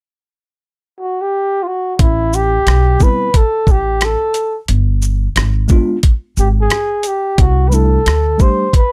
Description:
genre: hip hop, jazz-hop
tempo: 89 BPM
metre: 4/4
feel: swing 65% on 16ths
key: A dorian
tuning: A4 = 440 Hz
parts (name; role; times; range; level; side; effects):
- breathy flugelhorn; melody; 1.0-8.9 s; E4 to C5; -18 LUFS; equal; none
- upright bass; bass; 2.0-8.3 s; G1 to D2; -17 LUFS; equal; none
- boom bap sampler-style drum kit; drums; 2.0-8.9 s; hi-hat, kick drum, rim click, shaker; -15 LUFS; equal; none
- tine electric piano; accompaniment; 3.0-8.7 s; G3 to G4; -20 LUFS; equal; none
room: little or no reverb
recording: none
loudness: -14 LUFS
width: mono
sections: 0.0-2.0 A section; 2.0-8.9 B section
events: none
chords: 0.0 N.C.; 2.0 A7sus2; 4.7 G7b9; 7.4 C6

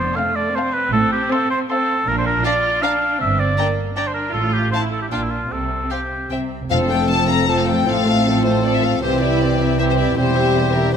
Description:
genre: quick classical-period movement for symphony orchestra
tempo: 157 BPM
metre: 3/4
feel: straight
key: F major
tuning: A4 = 439 Hz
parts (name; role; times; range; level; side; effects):
- warm oboe; second line; 0.0-11.0 s; E4 to F5; -22 LUFS; right 1 dB; none
- rich chamber viola section; accompaniment; 0.0-11.0 s; E3 to F4; -25 LUFS; right 1 dB; none
- dark studio double bass section; bass; 0.0-11.0 s; E1 to C2; -24 LUFS; right 4 dB; none
- rich chamber cello section; bass; 0.0-11.0 s; E2 to C3; -24 LUFS; right 3 dB; none
- timpani; percussion; 0.0-0.3, 6.7-7.3 s; F2; -28 LUFS; left 3 dB; none
- warm chamber violin section; melody; 0.2-11.0 s; Bb4 to C6; -24 LUFS; left 7 dB; none
- rich chamber violin section; second line; 0.2-11.0 s; C4 to G5; -26 LUFS; left 2 dB; none
- dark clarinet; second line; 6.7-11.0 s; C4; -26 LUFS; left 4 dB; none
- dark bassoon; accompaniment; 6.7-11.0 s; E3 to G3; -25 LUFS; right 1 dB; none
- mellow French horn section; sustained chords; 6.7-11.0 s; G3 to G4; -24 LUFS; left 6 dB; none
room: moderate concert hall reverb, RT60 2.1 s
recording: none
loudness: -16 LUFS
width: side -7 dB against mid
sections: 0.0-6.7 A section; 6.7-11.0 B section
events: none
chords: 0.0 F; 0.9 F/A; 2.1 Bb; 3.2 Gm; 4.3 F/A; 5.1 Gm7/Bb; 5.5 C5; 6.7 F; 7.9 F/A; 9.0 C; 10.2 C/E

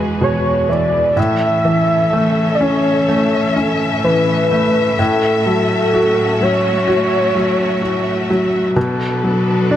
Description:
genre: pop ballad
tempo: 63 BPM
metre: 4/4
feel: straight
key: A major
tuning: A4 = 441 Hz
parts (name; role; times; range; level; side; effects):
- clear grand piano; accompaniment; 0.0-9.8 s; E2 to F#4; -16 LUFS; equal; none
- warm studio string section; sustained chords; 0.0-9.8 s; E2 to E5; -20 LUFS; left 1 dB; none
- warm velvety synth lead; melody; 0.2-9.8 s; A4 to E5; -17 LUFS; equal; chorus
room: light reverb, small room ambience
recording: none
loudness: -13 LUFS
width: side -11 dB against mid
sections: 0.0-9.8 A section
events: none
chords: 0.0 E; 1.2 A; 5.0 A6; 8.8 Bm7

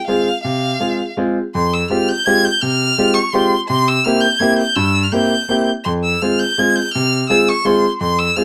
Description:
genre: musette waltz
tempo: 167 BPM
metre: 3/4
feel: straight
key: F harmonic minor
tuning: A4 = 438 Hz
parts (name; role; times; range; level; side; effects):
- clear violin; melody; 0.0-8.4 s; F5 to Ab6; -20 LUFS; equal; none
- clear upright piano; accompaniment; 0.1-8.4 s; F2 to Ab4; -19 LUFS; equal; none
room: moderate booth ambience, RT60 0.2 s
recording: dark, warm production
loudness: -16 LUFS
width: mono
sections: 0.0-1.5 A section; 1.5-8.4 A section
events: none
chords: 0.0 Fm; 1.5 Fmadd9; 3.7 C7; 5.9 Fm

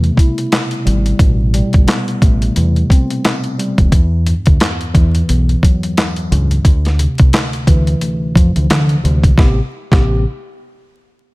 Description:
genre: hip hop, boom-bap hip-hop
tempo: 88 BPM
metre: 4/4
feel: swing 59% on 16ths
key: A minor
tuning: A4 = 440 Hz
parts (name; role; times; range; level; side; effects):
- mellow tine electric piano; accompaniment; 0.0-10.2 s; D2 to G4; -18 LUFS; equal; fast stereo tremolo, cassette tape, high-pass filter, low-pass filter
- deep dub fingered electric bass; bass; 0.0-10.2 s; D#1 to D3; -14 LUFS; equal; none
- boom bap sampler-style drum kit; drums; 0.0-10.1 s; handclaps, hi-hat, kick drum, snare drum; -12 LUFS; equal; none
room: little or no reverb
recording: vinyl crackle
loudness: -11 LUFS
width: side -22 dB against mid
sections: 0.0-9.4 A section; 9.4-11.3 B section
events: none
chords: 0.0 Am9; 3.9 Emadd9; 6.6 Dm9; 9.4 Am9

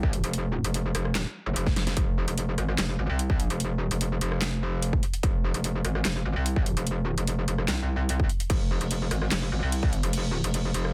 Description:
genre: heavy wobble dubstep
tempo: 147 BPM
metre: 4/4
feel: half-time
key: F minor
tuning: A4 = 440 Hz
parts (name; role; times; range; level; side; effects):
- metallic wobble bass; bass; 0.0-10.9 s; Eb1 to C2; -29 LUFS; equal; chorus, overdrive
- electronic kick drum; drums; 0.0-9.9 s; none; -28 LUFS; equal; small room ambience
- dubstep drum kit; drums; 0.1-10.9 s; crash cymbal, handclaps, hi-hat, rim click, snare drum; -34 LUFS; equal; small room ambience
room: little or no reverb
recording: dense, heavily limited modern master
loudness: -27 LUFS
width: mono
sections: 0.0-10.9 A section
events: drum fill 1.7-2.0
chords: none

